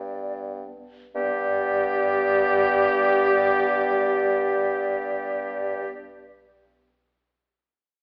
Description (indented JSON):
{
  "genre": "classical, slow romantic movement for wind quintet",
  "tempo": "free time",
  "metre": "none",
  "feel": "none",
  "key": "G major",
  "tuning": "A4 = 441 Hz",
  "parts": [
    { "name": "mellow hollow concert flute", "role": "melody", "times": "0.0-5.9 s", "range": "D5", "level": "-31 LUFS", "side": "equal", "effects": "none" },
    { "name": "dark clarinet", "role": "accompaniment", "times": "0.0-5.9 s", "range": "B3", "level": "-36 LUFS", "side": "equal", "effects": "none" },
    { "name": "mellow bassoon", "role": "bass", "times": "0.0-5.9 s", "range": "G2", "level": "-29 LUFS", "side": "equal", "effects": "none" },
    { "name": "bright oboe", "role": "second line", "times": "1.2-5.9 s", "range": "G4", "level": "-29 LUFS", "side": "equal", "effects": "none" },
    { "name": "mellow French horn", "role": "accompaniment", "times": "1.2-5.9 s", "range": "G4", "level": "-28 LUFS", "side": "equal", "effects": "none" }
  ],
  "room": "wet recital hall reverb, RT60 1.4 s",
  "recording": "recorded in a church or concert hall, AM radio sound",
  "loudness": "-23 LUFS",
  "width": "mono",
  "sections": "0.0-1.2 A section; 1.2-6.5 B section",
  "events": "slowing down 0.0-1.2",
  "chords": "0.0 G"
}